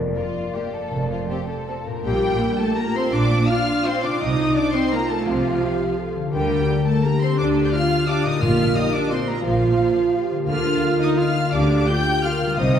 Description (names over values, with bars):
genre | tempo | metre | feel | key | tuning
classical, orchestral ballroom waltz | 149-189 BPM | 3/4 | rubato | Bb major | A4 = 439 Hz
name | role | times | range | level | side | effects
mellow hollow concert flute | second line | 0.0-1.8 s | D5 | -33 LUFS | left 4 dB | none
concert harp | arpeggios | 0.0-12.8 s | F2 to F5 | -26 LUFS | left 5 dB | none
rich studio cello section | bass | 0.0-12.8 s | F2 to D3 | -28 LUFS | right 2 dB | none
warm studio double bass section | bass | 0.0-12.8 s | F1 to D2 | -27 LUFS | right 1 dB | none
rich studio violin section | melody | 0.2-12.8 s | A4 to G6 | -28 LUFS | left 2 dB | none
rich studio violin section | second line | 0.2-12.8 s | F4 to G5 | -29 LUFS | left 2 dB | none
rich studio viola section | accompaniment | 0.2-12.8 s | F3 to G4 | -26 LUFS | right 1 dB | none
mellow French horn section | sustained chords | 2.1-12.8 s | D4 to C5 | -24 LUFS | right 2 dB | none
timpani | percussion | 8.4-8.9 s | Bb2 | -26 LUFS | equal | none
room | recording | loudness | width
wet scoring stage reverb, RT60 1.8 s | heard from further back in the room | -18 LUFS | side -8 dB against mid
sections
0.0-2.1 A section; 2.1-12.8 B section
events
none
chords
0.0 Bb/F; 0.9 F; 2.1 Bb; 4.2 F7/C; 6.3 Bb/D; 8.4 Bb; 10.5 Bb/D